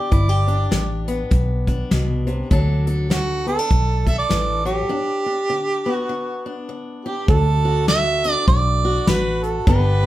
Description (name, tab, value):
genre	honky-tonk and classic country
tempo	100 BPM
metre	4/4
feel	swing 60% on 8ths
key	unclear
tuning	A4 = 440 Hz
part	mellow harmonica	melody	0.0-10.1 s	F#4 to E5	-22 LUFS	right 3 dB	none
part	picked swing-style acoustic guitar	accompaniment	0.0-10.1 s	G2 to A4	-26 LUFS	left 3 dB	none
part	vintage muted fingered electric bass	bass	0.1-10.1 s	G1 to D2	-20 LUFS	equal	none
part	soft brush drum kit	drums	0.1-9.8 s	hi-hat, kick drum, snare drum	-19 LUFS	equal	none
part	honky-tonk upright piano	accompaniment	7.3-10.1 s	D4 to B4	-31 LUFS	right 2 dB	none
room	moderate studio reverb, RT60 0.6 s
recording	heard from further back in the room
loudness	-17 LUFS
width	side -15 dB against mid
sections	0.0-7.3 A section; 7.3-10.1 B section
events	break 4.9-7.3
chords	0.0 G; 2.5 D; 4.9 G; 7.3 D